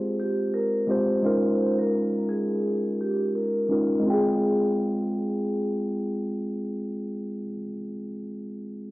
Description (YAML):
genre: hip hop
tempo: 85 BPM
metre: 4/4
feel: swing 55% on 16ths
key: F minor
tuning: A4 = 440 Hz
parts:
  - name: vibraphone with soft mallets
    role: melody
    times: 0.0-6.1 s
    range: G4 to C5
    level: -29 LUFS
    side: equal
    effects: high-pass filter, low-pass filter, cassette tape, tape echo
  - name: mellow tine electric piano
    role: accompaniment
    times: 0.0-8.9 s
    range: Ab3 to G5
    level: -25 LUFS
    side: equal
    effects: cassette tape, high-pass filter, low-pass filter
room: light reverb, small room ambience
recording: home recording on cassette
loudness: -23 LUFS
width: side -19 dB against mid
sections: 0.0-4.1 A section; 4.1-6.9 B section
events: filter sweep 0.0-4.1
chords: 0.0 Fmadd9; 1.2 Db6; 4.1 Fmadd9